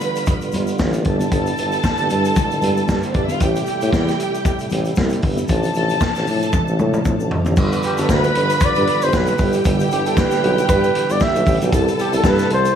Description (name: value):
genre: disco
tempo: 115 BPM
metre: 4/4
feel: swing 56% on 16ths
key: unclear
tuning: A4 = 441 Hz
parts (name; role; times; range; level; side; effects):
- dark symphonic string section; second line; 0.0-12.7 s; C4 to B5; -23 LUFS; right 1 dB; slapback echo
- tonewheel organ; sustained chords; 0.0-12.8 s; C3 to F4; -24 LUFS; right 2 dB; overdrive, chorus vibrato, slow rotary speaker
- vintage drum kit; drums; 0.0-12.8 s; crash cymbal, hi-hat, kick drum, snare drum, toms; -21 LUFS; equal; none
- egg shaker; percussion; 0.0-12.8 s; none; -40 LUFS; left 9 dB; none
- congas; percussion; 0.3-7.6 s; none; -28 LUFS; left 8 dB; none
- clear tuba; bass; 0.5-12.7 s; G1 to A2; -20 LUFS; equal; none
- warm flugelhorn; melody; 7.9-12.8 s; G4 to E5; -20 LUFS; equal; none
room: studio reverb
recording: none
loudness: -15 LUFS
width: side -8 dB against mid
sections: 0.0-7.6 A section; 7.6-12.8 B section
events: drum fill 6.5-7.6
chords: 0.0 G7; 1.1 Em7/G; 3.4 Am7; 5.5 Dm7/A; 7.6 G7; 9.4 Em7/G; 11.7 Cmaj7